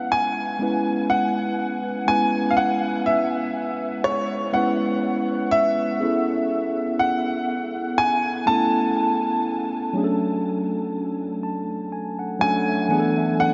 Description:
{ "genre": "R&B", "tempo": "61 BPM", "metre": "4/4", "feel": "swing 54% on 16ths", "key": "unclear", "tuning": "A4 = 441 Hz", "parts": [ { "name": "clear baby grand piano", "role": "melody", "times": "0.0-13.5 s", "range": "C#5 to A5", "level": "-25 LUFS", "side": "equal", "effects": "analog delay" }, { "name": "mellow tine electric piano", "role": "accompaniment", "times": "0.0-13.5 s", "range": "E3 to A5", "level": "-26 LUFS", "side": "equal", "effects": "none" } ], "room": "wet huge ambient reverb, RT60 7.8 s", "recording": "dreamy mix soaked in reverb, nothing above 7.5 kHz", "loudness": "-23 LUFS", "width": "mono", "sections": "0.0-13.5 A section", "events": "tine electric piano fill 10.9-13.5", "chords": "0.0 C#m7; 6.0 Amaj9; 9.9 Dmaj7; 12.9 E7sus4" }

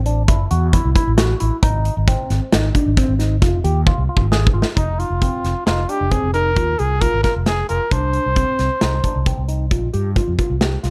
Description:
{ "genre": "progressive instrumental, band music in an uneven meter", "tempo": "134 BPM", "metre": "7/4", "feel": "straight", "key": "F dorian", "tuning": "A4 = 441 Hz", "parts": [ { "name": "fretless electric bass", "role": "bass", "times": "0.0-10.9 s", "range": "F1 to G2", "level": "-22 LUFS", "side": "equal", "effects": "none" }, { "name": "barky tine electric piano", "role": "arpeggios", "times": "0.1-10.9 s", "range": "C4 to Ab4", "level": "-27 LUFS", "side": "equal", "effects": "overdrive, phaser, analog delay" }, { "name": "big rock drum kit", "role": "drums", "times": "0.1-10.9 s", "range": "hi-hat, kick drum, snare drum", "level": "-21 LUFS", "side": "equal", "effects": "none" }, { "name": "breathy trumpet", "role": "melody", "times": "4.8-9.3 s", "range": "Eb4 to C5", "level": "-23 LUFS", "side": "equal", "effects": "analog delay" } ], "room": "light reverb, small room ambience", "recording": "none", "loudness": "-18 LUFS", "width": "mono", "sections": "0.0-4.8 A section; 4.8-10.9 B section", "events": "drum fill 3.9-4.8", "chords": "0.0 A5; 1.6 Ab; 4.8 Fm7; 7.9 Csus4" }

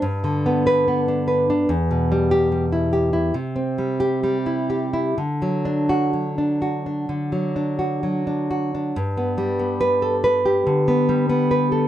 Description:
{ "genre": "romantic piece for solo classical guitar", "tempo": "62-75 BPM", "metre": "4/4", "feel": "rubato", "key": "G major", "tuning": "A4 = 440 Hz", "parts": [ { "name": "nylon-string guitar", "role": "solo", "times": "0.0-11.9 s", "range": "E2 to B4", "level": "-18 LUFS", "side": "equal", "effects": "none" } ], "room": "little or no reverb", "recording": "dry, close 1970s-style studio recording", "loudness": "-19 LUFS", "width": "side -12 dB against mid", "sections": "0.0-9.0 A section; 9.0-11.9 B section", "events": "none", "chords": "0.0 G; 1.7 Em; 3.4 C; 5.2 D; 9.0 G" }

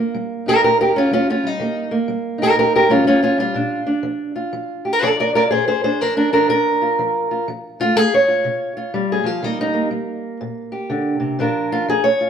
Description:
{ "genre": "acoustic country blues, solo or duo", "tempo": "123 BPM", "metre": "4/4", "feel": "swing 64% on 8ths", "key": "Bb mixolydian", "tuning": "A4 = 439 Hz", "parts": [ { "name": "fingerpicked steel-string acoustic guitar", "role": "solo", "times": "0.0-12.3 s", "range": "Bb2 to D5", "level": "-16 LUFS", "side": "equal", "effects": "none" } ], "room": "wet stone room reverb, RT60 1.2 s", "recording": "band playing live in one room", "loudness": "-16 LUFS", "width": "side -8 dB against mid", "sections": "0.0-12.3 A section", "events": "steel-string acoustic guitar solo 0.0-12.3", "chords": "0.0 Eb; 3.6 Bb; 7.5 F; 9.4 Eb; 11.4 Bb" }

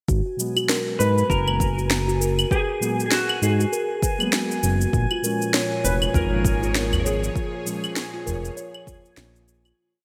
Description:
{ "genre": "organic downtempo", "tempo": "99 BPM", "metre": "4/4", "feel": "swing 58% on 16ths", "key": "G# dorian", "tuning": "A4 = 440 Hz", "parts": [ { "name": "steel tongue drum", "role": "arpeggios", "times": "0.1-9.7 s", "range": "E#4 to C#5", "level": "-31 LUFS", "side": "equal", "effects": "low-pass filter, digital delay" }, { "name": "smooth synth bass", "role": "bass", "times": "0.1-9.7 s", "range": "E#1 to G#2", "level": "-25 LUFS", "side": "equal", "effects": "none" }, { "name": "electronic cabasa, claves and snare drum", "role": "drums", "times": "0.1-9.8 s", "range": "none", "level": "-28 LUFS", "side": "equal", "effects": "none" }, { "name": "electronic kick drum", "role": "drums", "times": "0.1-9.0 s", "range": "none", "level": "-27 LUFS", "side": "equal", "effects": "none" }, { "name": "drifting glass-harmonics texture", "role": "texture", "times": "1.1-9.8 s", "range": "G#5", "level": "-37 LUFS", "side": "equal", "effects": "chorus, built-in reverb" }, { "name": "muted felt-like synth keys", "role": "accompaniment", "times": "0.4-7.9 s", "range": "A#2 to C#4", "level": "-32 LUFS", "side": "equal", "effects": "chorus, sidechain pumping, digital delay" }, { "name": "clean lap steel guitar", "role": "melody", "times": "1.0-9.1 s", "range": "F#4 to B4", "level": "-30 LUFS", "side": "equal", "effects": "lush chorus, digital delay" }, { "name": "bowed-like drone", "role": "sustained chords", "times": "5.8-9.8 s", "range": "A#2 to C#5", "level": "-37 LUFS", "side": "equal", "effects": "built-in reverb, sidechain pumping" }, { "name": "udu", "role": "percussion", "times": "5.8-9.0 s", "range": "none", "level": "-31 LUFS", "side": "equal", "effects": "none" } ], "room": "moderate lush hall reverb, RT60 2.5 s", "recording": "bright 1980s-style digital production", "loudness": "-22 LUFS", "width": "mono", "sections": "0.1-9.8 groove", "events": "filter sweep on steel tongue drum 0.1-9.8; fade-out 6.6-9.8", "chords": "0.1 G#m9; 4.9 A#m7" }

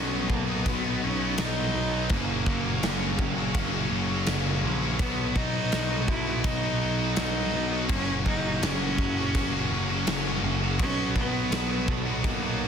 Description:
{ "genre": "quiet-loud alternative rock", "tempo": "83 BPM", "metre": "4/4", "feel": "straight", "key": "B major", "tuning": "A4 = 442 Hz", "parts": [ { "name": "rich cello", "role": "melody", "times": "0.0-12.7 s", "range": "F#3 to E4", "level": "-31 LUFS", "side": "equal", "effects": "none" }, { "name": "rich studio string section", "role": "sustained chords", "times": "0.0-12.7 s", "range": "F#4 to D#6", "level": "-42 LUFS", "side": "left 2 dB", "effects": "none" }, { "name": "distorted electric guitar", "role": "riff", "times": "0.0-12.7 s", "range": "F#2 to F#4", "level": "-33 LUFS", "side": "left 14 dB", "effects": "overdrive" }, { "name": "thick fuzz guitar", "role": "riff", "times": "0.0-12.7 s", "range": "F#2 to B3", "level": "-33 LUFS", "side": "equal", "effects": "distortion" }, { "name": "tight distorted guitar", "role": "riff", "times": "0.0-12.7 s", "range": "F#2 to F#4", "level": "-33 LUFS", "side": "right 13 dB", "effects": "distortion" }, { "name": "fuzz picked electric bass", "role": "bass", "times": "0.0-12.7 s", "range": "F#1 to B1", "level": "-31 LUFS", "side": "equal", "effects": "overdrive" }, { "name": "huge arena drum kit", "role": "drums", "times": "0.3-12.4 s", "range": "crash cymbal, kick drum, snare drum", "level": "-30 LUFS", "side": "equal", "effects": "none" } ], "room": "light reverb, small room ambience", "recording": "dense, heavily limited modern master", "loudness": "-24 LUFS", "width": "side -7 dB against mid", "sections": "0.0-12.7 A section", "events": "none", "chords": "0.0 B; 2.1 F#add9; 5.0 B; 7.9 F#add9; 10.8 B" }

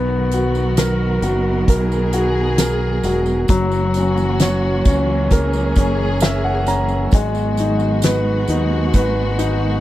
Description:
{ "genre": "pop ballad", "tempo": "66 BPM", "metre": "4/4", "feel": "straight", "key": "B major", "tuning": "A4 = 442 Hz", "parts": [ { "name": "clear concert grand piano", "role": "accompaniment", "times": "0.0-9.8 s", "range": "F#3 to A#5", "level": "-20 LUFS", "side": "left 2 dB", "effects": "none" }, { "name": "warm studio string section", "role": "sustained chords", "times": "0.0-9.8 s", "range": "D#3 to A#4", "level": "-22 LUFS", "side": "right 2 dB", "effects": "none" }, { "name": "fingered electric bass", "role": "bass", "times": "0.0-9.8 s", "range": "E1 to D#2", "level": "-20 LUFS", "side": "equal", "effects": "none" }, { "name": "natural country drum kit", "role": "drums", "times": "0.3-9.6 s", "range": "hi-hat, kick drum, snare drum", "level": "-16 LUFS", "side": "equal", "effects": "none" }, { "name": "tambourine", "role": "percussion", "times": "0.3-9.6 s", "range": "none", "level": "-34 LUFS", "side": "right 15 dB", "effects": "none" } ], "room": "small room ambience", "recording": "dry, close 1970s-style studio recording", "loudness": "-15 LUFS", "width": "side -14 dB against mid", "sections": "0.0-9.8 A section", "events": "grand piano fill 5.8-7.1", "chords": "0.0 Bmaj7; 3.5 F#7; 7.1 G#m7" }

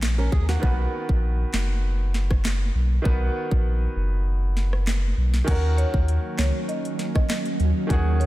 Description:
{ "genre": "dancehall", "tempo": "99 BPM", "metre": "4/4", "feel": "straight", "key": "Eb minor", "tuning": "A4 = 440 Hz", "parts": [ { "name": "bright baby grand piano", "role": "accompaniment", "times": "0.0-8.3 s", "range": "Eb3 to B4", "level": "-32 LUFS", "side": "right 1 dB", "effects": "sidechain pumping" }, { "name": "warm sub bass", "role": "bass", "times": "0.0-8.3 s", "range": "F#1 to Eb2", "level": "-22 LUFS", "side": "equal", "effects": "none" }, { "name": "island pop drum kit", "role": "drums", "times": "0.0-8.3 s", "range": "crash cymbal, handclaps, hi-hat, kick drum, rim click, snare drum", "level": "-25 LUFS", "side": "equal", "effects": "none" }, { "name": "flamenco guitar", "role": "arpeggios", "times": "0.2-0.8 s", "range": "Bb3 to Bb4", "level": "-33 LUFS", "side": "right 3 dB", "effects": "tape echo" }, { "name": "ethereal airy pad", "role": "sustained chords", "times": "6.0-8.3 s", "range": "Eb3 to Gb4", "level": "-28 LUFS", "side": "right 2 dB", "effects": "ensemble chorus, built-in reverb, sidechain pumping" }, { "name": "marimba with medium mallets", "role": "melody", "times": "5.8-8.3 s", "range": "Db5 to Eb5", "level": "-32 LUFS", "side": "left 1 dB", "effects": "tape echo" } ], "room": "light reverb, studio ambience", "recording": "none", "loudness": "-21 LUFS", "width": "side -16 dB against mid", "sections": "0.0-5.5 A section; 5.5-8.3 B section", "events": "kick muted 4.3-5.5", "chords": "0.0 Ebm7; 0.6 B; 5.5 Ebm7" }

